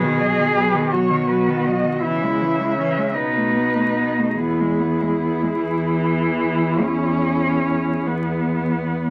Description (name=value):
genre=classical, lyrical piece for cello ensemble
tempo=47-55 BPM (dotted quarters)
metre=12/8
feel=rubato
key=E major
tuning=A4 = 439 Hz
part: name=muted cello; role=melody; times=0.0-8.6 s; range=G#4 to E5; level=-30 LUFS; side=equal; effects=none
part: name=muted cello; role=second line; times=0.0-8.9 s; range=C#4 to G#4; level=-24 LUFS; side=equal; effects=none
part: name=muted cello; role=accompaniment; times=0.0-9.1 s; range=D#3 to C#4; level=-26 LUFS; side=equal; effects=none
part: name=muted cello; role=bass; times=0.0-9.1 s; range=E2 to C#3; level=-25 LUFS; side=equal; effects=none
room=wet studio reverb, RT60 0.8 s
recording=vinyl crackle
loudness=-20 LUFS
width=mono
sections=0.0-9.1 A section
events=none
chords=0.0 B; 2.0 C#m; 3.2 B7; 4.4 E